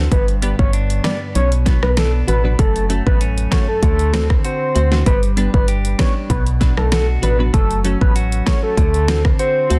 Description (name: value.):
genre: dancehall.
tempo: 97 BPM.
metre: 4/4.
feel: straight.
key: F# phrygian.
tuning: A4 = 440 Hz.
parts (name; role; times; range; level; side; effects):
wavetable chord stab; accompaniment; 0.0-9.8 s; F#3 to C5; -28 LUFS; equal; sidechain pumping.
direct-recorded clean electric guitar; arpeggios; 0.0-9.8 s; F#2 to G4; -28 LUFS; equal; digital delay.
organ-like FM bass; bass; 0.0-9.8 s; F#1 to D2; -20 LUFS; equal; none.
soft octave-layered synth lead; melody; 0.1-9.8 s; A4 to D5; -24 LUFS; equal; chorus, digital delay.
pop drum kit; drums; 0.1-9.8 s; hi-hat, kick drum, rim click, snare drum; -20 LUFS; equal; none.
room: digital ambience.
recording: dense, heavily limited modern master.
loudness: -16 LUFS.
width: mono.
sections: 0.0-9.8 A section.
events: none.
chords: 0.1 G; 1.4 Bm; 2.6 F#m; 3.8 D7; 5.1 G; 6.3 Bm; 7.5 F#m; 8.8 D7.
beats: | 0.12 0.73 1.35 1.97 | 2.59 3.21 3.83 4.45 | 5.07 5.68 6.30 6.92 | 7.54 8.16 8.78 9.39.